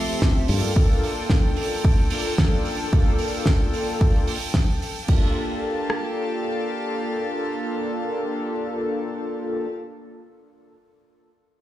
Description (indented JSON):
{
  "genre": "nu-disco, nu disco",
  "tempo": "111 BPM",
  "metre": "4/4",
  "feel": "straight",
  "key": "G minor",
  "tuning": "A4 = 440 Hz",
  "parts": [
    { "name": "soft octave-layered synth lead", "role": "melody", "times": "0.0-0.5 s", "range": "F4", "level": "-38 LUFS", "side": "left 1 dB", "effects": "none" },
    { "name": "mellow synth brass", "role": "accompaniment", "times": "0.0-9.7 s", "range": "A3 to E5", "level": "-26 LUFS", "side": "left 1 dB", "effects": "chorus, sidechain pumping, tape echo" },
    { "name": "warm studio string section", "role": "sustained chords", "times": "0.0-9.7 s", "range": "G4 to C6", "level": "-32 LUFS", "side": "left 2 dB", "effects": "sidechain pumping" },
    { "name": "damped 70s drum kit", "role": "drums", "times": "0.2-5.2 s", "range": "crash cymbal, hi-hat, snare drum", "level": "-28 LUFS", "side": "right 2 dB", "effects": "none" },
    { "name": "house drum kit", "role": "drums", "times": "0.2-6.0 s", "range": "kick drum, rim click", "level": "-18 LUFS", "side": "equal", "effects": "overdrive" },
    { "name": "modern bright fingered electric bass", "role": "bass", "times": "0.5-0.6 s", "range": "G2", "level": "-21 LUFS", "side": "equal", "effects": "none" }
  ],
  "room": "light reverb, small room ambience",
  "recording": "played on a big sound system in a bare room, large studio reverb",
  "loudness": "-20 LUFS",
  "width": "side -13 dB against mid",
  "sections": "0.0-5.1 A section; 5.1-9.4 B section",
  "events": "none",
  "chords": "0.5 Gm9"
}